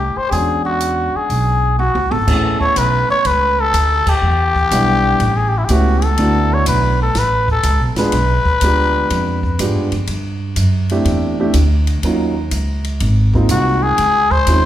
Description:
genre	jazz, small-group swing and bop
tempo	123 BPM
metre	4/4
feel	swing 68% on 8ths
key	unclear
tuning	A4 = 441 Hz
part	trumpet with cup mute	melody	0.0-9.9, 13.5-14.7 s	E4 to C#5	-16 LUFS	left 2 dB	none
part	upright bass	bass	0.0-14.7 s	G#1 to Ab2	-17 LUFS	equal	none
part	dark concert grand piano	accompaniment	0.3-14.7 s	F#3 to F#5	-20 LUFS	right 2 dB	none
part	compact cocktail drum kit	drums	0.3-14.6 s	crash cymbal, hi-hat, kick drum, ride cymbal, snare drum, toms	-24 LUFS	equal	none
room	moderate recital hall reverb, RT60 1.4 s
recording	recorded in a church or concert hall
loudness	-13 LUFS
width	side -12 dB against mid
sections	0.0-2.3 A section; 2.3-14.7 B section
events	drum fill 1.8-2.3; band accent 4.0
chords	0.3 E13; 2.3 Amaj9; 4.2 Em7; 5.2 A9; 6.2 D69; 8.1 G7b9; 10.1 C69; 12.0 D#m7; 13.0 G#; 14.0 C#maj9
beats	| 0.33 0.81 1.30 1.79 | 2.28 2.77 3.25 3.74 | 4.23 4.71 5.20 5.69 | 6.18 6.67 7.15 7.64 | 8.13 8.62 9.10 9.59 | 10.08 10.57 11.06 11.54 | 12.03 12.52 13.01 13.50 | 13.98 14.47

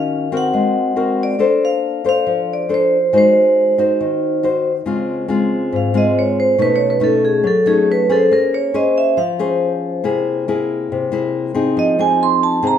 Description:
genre	bossa nova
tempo	139 BPM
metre	4/4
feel	straight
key	Db major from 4.9 s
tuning	A4 = 440 Hz
part	vibraphone with medium hard mallets	melody	0.0-12.8 s	Ab4 to C6	-16 LUFS	right 3 dB	none
part	nylon-string guitar	accompaniment	0.0-12.8 s	Ab2 to C5	-17 LUFS	left 4 dB	none
room	wet large studio reverb, RT60 0.9 s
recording	minimal, uncompressed stereo recording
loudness	-14 LUFS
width	side -9 dB against mid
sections	0.0-4.9 A section; 4.9-12.8 B section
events	vibraphone solo 4.9-12.8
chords	0.0 Ebm7; 0.5 Ab9; 1.4 Bbmaj9; 3.1 Ab7; 4.9 Dbmaj7; 6.6 Cb9; 8.3 Bbm9; 10.0 C7alt; 11.8 Fm7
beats	0.10 0.53 0.96 | 1.40 1.83 2.27 2.70 | 3.13 3.56 4.00 4.43 | 4.86 5.30 5.73 6.16 | 6.59 7.02 7.46 7.89 | 8.32 8.75 9.18 9.62 | 10.05 10.48 10.91 11.35 | 11.78 12.21 12.64

